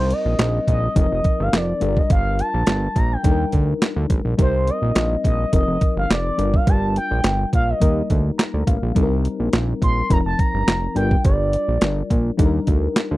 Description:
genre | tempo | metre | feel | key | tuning
early-eighties boogie funk | 105 BPM | 4/4 | straight | C dorian | A4 = 440 Hz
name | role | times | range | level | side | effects
expressive synth lead | melody | 0.0-12.3 s | C5 to C6 | -24 LUFS | equal | chorus, slapback echo
mellow FM electric piano | accompaniment | 0.0-13.2 s | F3 to Bb5 | -26 LUFS | left 4 dB | chorus
fat analog bass | bass | 0.0-13.2 s | F1 to Eb2 | -21 LUFS | equal | none
crisp 8-bit digital drum machine | drums | 0.1-13.1 s | handclaps, hi-hat, kick drum, snare drum | -18 LUFS | equal | none
room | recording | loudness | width
little or no reverb | dry, close 1970s-style studio recording | -17 LUFS | side -18 dB against mid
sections
0.0-13.2 A section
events
FM electric piano fill 8.1-9.0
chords
0.0 Cm7; 1.0 F7sus4; 1.8 Gm7; 3.2 Ebmaj7; 4.4 Cm7; 5.5 F7sus4; 6.4 Gm7; 7.8 Ebmaj7; 9.0 Cm7; 10.1 F7sus4; 11.0 Gm7; 12.4 Ebmaj7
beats
0.39 0.96 1.53 | 2.10 2.67 3.25 3.82 | 4.39 4.96 5.53 6.10 | 6.67 7.25 7.82 8.39 | 8.96 9.53 10.10 10.68 | 11.25 11.82 12.39 12.96

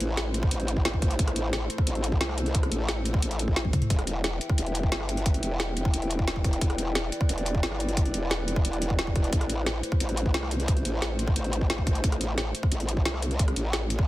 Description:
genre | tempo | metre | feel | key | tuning
dark technical drum and bass | 177 BPM | 4/4 | straight | unclear | A4 = 440 Hz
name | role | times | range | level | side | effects
dark analog pad | sustained chords | 0.0-14.1 s | A3 to G5 | -34 LUFS | left 1 dB | chorus, sidechain pumping
growl bass | bass | 0.0-14.1 s | E1 to C2 | -29 LUFS | equal | chorus, tube saturation, sidechain pumping
drum and bass drum kit | drums | 0.0-14.1 s | hi-hat, rim click, snare drum, toms | -30 LUFS | equal | none
electronic kick drum | drums | 0.4-14.1 s | none | -25 LUFS | equal | none
room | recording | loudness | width
little or no reverb | dense, heavily limited modern master | -24 LUFS | side -16 dB against mid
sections
0.0-14.1 A section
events
drum fill 3.6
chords
0.0 Am; 3.9 Em; 9.3 Am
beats
0.17 0.51 0.85 | 1.19 1.53 1.87 2.21 | 2.55 2.88 3.22 3.56 | 3.90 4.24 4.58 4.92 | 5.26 5.60 5.94 6.28 | 6.61 6.95 7.29 7.63 | 7.97 8.31 8.65 8.99 | 9.33 9.66 10.00 10.34 | 10.68 11.02 11.36 11.70 | 12.04 12.38 12.72 13.05 | 13.39 13.73 14.07

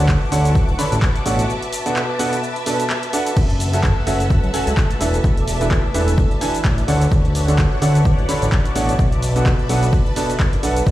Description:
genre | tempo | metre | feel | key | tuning
piano house | 128 BPM | 4/4 | swing 57% on 16ths | unclear | A4 = 440 Hz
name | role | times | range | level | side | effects
analog string pad | sustained chords | 0.0-10.9 s | A4 to E6 | -28 LUFS | equal | ensemble chorus, sidechain pumping
bright upright piano | riff | 0.0-10.8 s | B2 to B5 | -22 LUFS | right 2 dB | sidechain pumping
fat analog bass | bass | 0.0-10.9 s | D1 to F#2 | -19 LUFS | equal | tube saturation, sidechain pumping
dark studio string section | texture | 0.0-10.9 s | F#4 to A5 | -27 LUFS | left 1 dB | sidechain pumping
electronic kick drum | drums | 0.1-10.9 s | none | -18 LUFS | equal | none
punchy analog drum machine | drums | 0.1-10.9 s | cabasa, crash cymbal, handclaps, hi-hat | -27 LUFS | equal | none
room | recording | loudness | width
little or no reverb | played on a big sound system in a bare room, stone room reverb | -15 LUFS | side -15 dB against mid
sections
0.0-10.9 A section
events
break 1.5-3.4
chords
0.0 Dmaj7; 1.5 Bm7; 3.4 F#m7; 5.0 E7sus4; 6.9 Dmaj7; 9.0 Bm7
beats
0.09 0.55 1.02 | 1.49 1.96 2.43 2.90 | 3.37 3.83 4.30 4.77 | 5.24 5.71 6.18 6.65 | 7.12 7.58 8.05 8.52 | 8.99 9.46 9.93 10.40 | 10.87

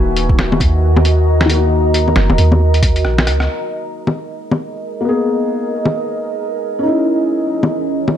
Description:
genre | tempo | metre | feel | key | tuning
future garage | 135 BPM | 4/4 | swing 61% on 16ths | G# minor | A4 = 443 Hz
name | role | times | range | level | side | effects
felt-muted upright piano | accompaniment | 0.0-8.2 s | D#3 to G#4 | -19 LUFS | left 2 dB | sidechain pumping, analog delay
deep dark ambient pad | sustained chords | 0.0-8.2 s | E3 to A#5 | -20 LUFS | right 2 dB | chorus, built-in reverb, sidechain pumping
soft 808-style bass | bass | 0.0-3.5 s | D#1 to D#2 | -14 LUFS | equal | sidechain pumping
lo-fi sampler-style drum kit | drums | 0.2-8.1 s | bongos, hi-hat, rim click, snare drum | -17 LUFS | left 2 dB | none
electronic kick drum | drums | 0.3-2.9 s | none | -15 LUFS | equal | overdrive
room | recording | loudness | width
moderate digital room reverb, RT60 1.2 s | none | -13 LUFS | side -10 dB against mid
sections
0.0-3.5 A section; 3.5-8.2 B section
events
drum fill 3.0-3.5; band accent 3.4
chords
0.0 D#m; 3.5 G#madd9; 7.0 C#madd9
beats
0.38 0.83 1.27 | 1.72 2.16 2.60 3.05 | 3.49 3.94 4.38 4.83 | 5.27 5.72 6.16 6.61 | 7.05 7.49 7.94

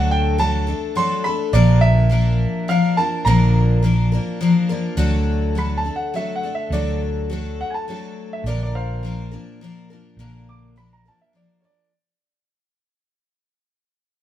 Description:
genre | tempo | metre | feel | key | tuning
folk rock and heartland rock | 104 BPM | 3/4 | straight | unclear | A4 = 440 Hz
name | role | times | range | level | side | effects
warm grand piano | melody | 0.0-11.9 s | C5 to D6 | -23 LUFS | right 2 dB | none
picked twelve-string acoustic guitar | accompaniment | 0.0-11.9 s | Bb2 to Bb4 | -22 LUFS | left 4 dB | none
hollow-body short-scale fingered electric bass | bass | 0.0-11.1 s | Bb1 to D2 | -18 LUFS | right 1 dB | none
room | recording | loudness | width
moderate stone room reverb, RT60 1.1 s | band playing live in one room | -17 LUFS | side -12 dB against mid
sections
0.0-5.0 A section; 5.0-11.9 B section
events
fade-out 5.0-11.9; grand piano solo 5.0-11.9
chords
0.0 D; 1.5 Bb; 5.0 D; 8.4 Bb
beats
0.39 0.96 | 1.53 2.11 2.68 | 3.26 3.83 4.40 | 4.98 5.55 6.13 | 6.71 7.28 7.86 | 8.44 9.02 9.59 | 10.17 10.75 11.33

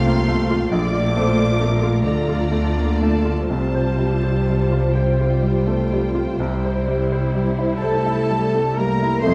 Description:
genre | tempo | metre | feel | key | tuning
classical, romantic movement for piano and orchestra | 41-46 BPM (dotted quarters) | 12/8 | rubato | unclear | A4 = 440 Hz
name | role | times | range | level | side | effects
bright baby grand piano | melody | 0.0-9.3 s | Bb1 to D5 | -25 LUFS | equal | none
rich studio violin section | melody | 0.0-9.3 s | G5 to D6 | -35 LUFS | equal | none
rich studio violin section | second line | 0.0-9.3 s | Bb4 to C6 | -32 LUFS | equal | none
warm studio viola section | accompaniment | 0.0-9.3 s | F3 to F4 | -28 LUFS | equal | none
rich studio cello section | bass | 0.0-9.3 s | Bb2 to C5 | -28 LUFS | equal | none
rich studio double bass section | bass | 0.0-9.3 s | F1 to D2 | -25 LUFS | equal | none
mellow hollow flute section | second line | 7.8-9.3 s | A5 to C6 | -30 LUFS | equal | none
mellow French horn section | sustained chords | 7.8-9.3 s | A3 to C4 | -27 LUFS | equal | none
dark bassoon | accompaniment | 9.2-9.3 s | A3 | -20 LUFS | equal | none
room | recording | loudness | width
moderate recital hall reverb, RT60 1.6 s | dark, warm production, vinyl crackle | -20 LUFS | mono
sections
0.0-9.2 A section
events
none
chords
0.0 Dm7; 0.7 Bbmaj7; 3.5 Csus4; 6.4 C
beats
0.70 2.05 | 3.49 4.95 6.40 7.82 | 9.25

